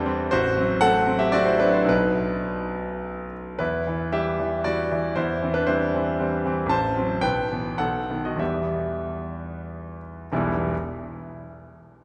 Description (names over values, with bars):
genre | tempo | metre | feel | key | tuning
classical, romantic character piece for solo piano | 92-123 BPM | 3/4 | rubato | E minor | A4 = 440 Hz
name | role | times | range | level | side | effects
bright concert grand piano | solo | 0.0-10.7 s | E1 to A5 | -25 LUFS | equal | none
room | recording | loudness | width
wet church reverb, RT60 3.5 s | recorded in a church or concert hall, nothing above 10.4 kHz | -24 LUFS | mono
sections
0.0-10.3 A section; 10.3-12.0 B section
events
slowing down 5.9-10.3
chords
0.3 F#dim/A; 1.9 B; 3.6 Em; 5.2 C/E; 6.7 F#dim/A; 7.2 Em/B; 7.8 B7; 8.4 Em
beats
| 0.30 0.79 1.32 | 1.89 2.46 3.02 | 3.59 4.13 4.65 | 5.16 5.66 6.17 | 6.69 7.22 7.78 | 8.39 9.04 9.68 | 10.31